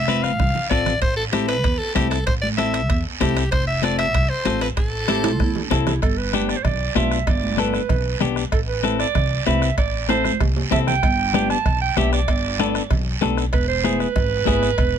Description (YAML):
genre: latin, cumbia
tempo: 192 BPM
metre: 4/4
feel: straight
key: A minor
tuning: A4 = 440 Hz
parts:
  - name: raspy soprano saxophone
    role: melody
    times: 0.0-5.7 s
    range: G4 to F5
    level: -24 LUFS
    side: equal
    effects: none
  - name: upright bass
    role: bass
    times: 0.0-15.0 s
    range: E1 to E2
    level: -24 LUFS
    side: equal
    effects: none
  - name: clean electric guitar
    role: accompaniment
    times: 0.1-14.7 s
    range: B3 to B4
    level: -23 LUFS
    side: left 10 dB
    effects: none
  - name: bombo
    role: percussion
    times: 0.1-14.9 s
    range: none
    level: -24 LUFS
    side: right 1 dB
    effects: none
  - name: congas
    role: percussion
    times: 0.1-14.6 s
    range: none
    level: -28 LUFS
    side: right 4 dB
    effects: none
  - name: guiro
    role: percussion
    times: 0.1-15.0 s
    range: none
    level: -32 LUFS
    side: right 6 dB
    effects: none
  - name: timbales and cowbell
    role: percussion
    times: 1.0-14.9 s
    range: none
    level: -30 LUFS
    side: right 7 dB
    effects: none
  - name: breathy clarinet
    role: second line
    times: 5.1-15.0 s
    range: D4 to A5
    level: -24 LUFS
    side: right 9 dB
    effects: none
room: little or no reverb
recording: close, detailed microphones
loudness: -18 LUFS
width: side -8 dB against mid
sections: 0.0-6.0 A section; 6.0-15.0 B section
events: drum fill 0.2-1.0, 5.1-6.0, 10.1-11.0; clarinet solo 6.0-15.0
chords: 0.0 F; 1.0 Am7; 3.5 F; 4.8 Am; 6.0 G; 8.5 Am; 11.0 G; 13.5 E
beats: 0.09 0.40 0.71 | 1.02 1.33 1.65 1.96 | 2.27 2.58 2.90 3.21 | 3.52 3.83 4.15 4.46 | 4.77 5.08 5.40 5.71 | 6.02 6.34 6.65 6.96 | 7.28 7.59 7.90 8.21 | 8.53 8.84 9.15 9.47 | 9.78 10.09 10.40 10.72 | 11.03 11.34 11.66 11.97 | 12.28 12.60 12.91 13.22 | 13.53 13.85 14.16 14.47 | 14.79